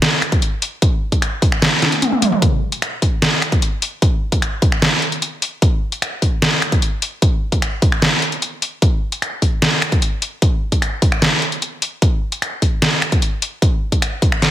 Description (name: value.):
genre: dubstep.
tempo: 150 BPM.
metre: 4/4.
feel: half-time.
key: none.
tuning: none.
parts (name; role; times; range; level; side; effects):
dubstep drum kit; drums; 0.0-14.5 s; finger snaps, hi-hat, snare drum, toms; -17 LUFS; equal; none.
electronic kick drum; drums; 0.3-14.3 s; none; -16 LUFS; equal; none.
room: light reverb.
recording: heavily compressed radio sound.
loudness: -15 LUFS.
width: side -13 dB against mid.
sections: 0.0-14.5 A section.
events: drum fill 1.8-2.4.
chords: none.